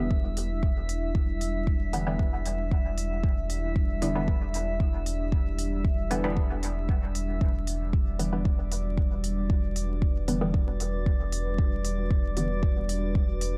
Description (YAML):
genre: dub techno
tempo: 115 BPM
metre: 4/4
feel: straight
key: E minor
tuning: A4 = 439 Hz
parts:
  - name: deep dark ambient pad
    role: sustained chords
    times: 0.1-13.6 s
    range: G3 to E5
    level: -38 LUFS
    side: equal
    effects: chorus, built-in reverb, sidechain pumping
  - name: filtered dub chord stab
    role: stabs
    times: 0.0-12.5 s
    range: D3 to B3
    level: -35 LUFS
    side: equal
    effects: chorus, phaser, sidechain pumping, dub echo
  - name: soft dub sub bass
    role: bass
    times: 0.0-13.6 s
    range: E1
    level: -33 LUFS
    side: equal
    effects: sidechain pumping
  - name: drifting glass-harmonics texture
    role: texture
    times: 0.0-13.6 s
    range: D5 to E5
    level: -41 LUFS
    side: equal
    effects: chorus, built-in reverb, sidechain pumping
  - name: electronic kick drum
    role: drums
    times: 0.1-13.3 s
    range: none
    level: -28 LUFS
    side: equal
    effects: none
  - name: electronic hi-hat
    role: drums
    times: 0.4-13.5 s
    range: none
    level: -39 LUFS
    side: equal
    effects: none
room: little or no reverb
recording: dark, warm production, vinyl crackle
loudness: -28 LUFS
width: mono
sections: 0.0-13.6 A section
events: none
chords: 0.0 Em7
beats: 0.11 0.63 | 1.15 1.67 2.19 2.72 | 3.24 3.76 4.28 4.80 | 5.33 5.85 6.37 6.89 | 7.41 7.93 8.46 8.98 | 9.50 10.02 10.54 11.06 | 11.59 12.11 12.63 13.15